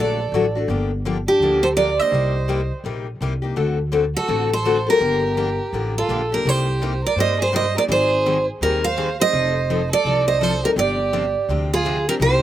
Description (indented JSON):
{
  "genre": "acoustic string swing (jazz manouche)",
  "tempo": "167 BPM",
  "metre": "4/4",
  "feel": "swing 62% on 8ths",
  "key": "G minor, C minor from 6.5 s",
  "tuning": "A4 = 440 Hz",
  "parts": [
    { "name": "picked steel-string acoustic guitar", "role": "melody", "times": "0.0-12.4 s", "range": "G4 to F5", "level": "-19 LUFS", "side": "right 2 dB", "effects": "slapback echo" },
    { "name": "warm violin", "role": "second line", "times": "0.0-12.4 s", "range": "D4 to C5", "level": "-28 LUFS", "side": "right 4 dB", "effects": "none" },
    { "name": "picked steel-string acoustic guitar", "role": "accompaniment", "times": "0.0-12.4 s", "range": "C3 to A4", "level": "-24 LUFS", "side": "left 5 dB", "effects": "none" },
    { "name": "upright bass", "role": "bass", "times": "0.0-12.4 s", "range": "F1 to G2", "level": "-24 LUFS", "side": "equal", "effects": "none" }
  ],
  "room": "little or no reverb",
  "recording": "recorded outdoors, with no room sound",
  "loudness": "-17 LUFS",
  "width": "side -12 dB against mid",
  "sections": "0.0-6.5 A section; 6.5-12.4 B section",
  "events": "none",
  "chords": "0.0 D; 0.7 Gm7; 2.1 Cm7; 3.6 D7; 5.0 Gm7; 6.5 Cm7; 7.9 Abmaj7; 9.3 F7; 10.8 G7sus4"
}